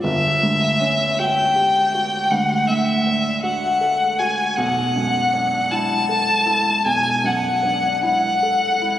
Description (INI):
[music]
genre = classical, impressionist duo for violin and grand piano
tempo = 53 BPM (dotted quarters)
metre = 12/8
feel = rubato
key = B minor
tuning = A4 = 440 Hz
[part]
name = rich violin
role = melody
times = 0.0-9.0 s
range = E5 to A5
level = -18 LUFS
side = left 1 dB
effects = none
[part]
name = warm grand piano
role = accompaniment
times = 0.0-9.0 s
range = G1 to A4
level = -23 LUFS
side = right 2 dB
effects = none
[sound]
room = wet church reverb, RT60 2.9 s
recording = recorded on a phone in the room, studio reverb, compression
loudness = -16 LUFS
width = side -12 dB against mid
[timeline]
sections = 0.0-9.0 A section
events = none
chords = 0.1 G5; 2.3 Dadd9; 4.6 Bm7